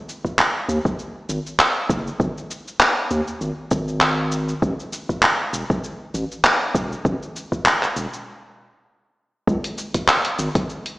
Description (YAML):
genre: organic downtempo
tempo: 99 BPM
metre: 4/4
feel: swing 55% on 16ths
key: C# minor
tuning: A4 = 439 Hz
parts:
  - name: deep house drum kit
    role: drums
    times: 0.1-11.0 s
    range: cabasa, handclaps, hi-hat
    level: -19 LUFS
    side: equal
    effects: overdrive
  - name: electronic kick drum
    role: drums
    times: 0.2-10.7 s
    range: none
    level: -23 LUFS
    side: equal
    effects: overdrive
  - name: round analog bass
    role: bass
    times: 0.7-10.5 s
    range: E1 to D#2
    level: -24 LUFS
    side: equal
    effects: none
room: wet scoring stage reverb, RT60 1.6 s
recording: played on a big sound system in a bare room, stone room reverb, small speaker sound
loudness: -19 LUFS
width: side -19 dB against mid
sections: 0.0-9.5 A section; 9.5-11.0 B section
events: stop 8.3-9.5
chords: none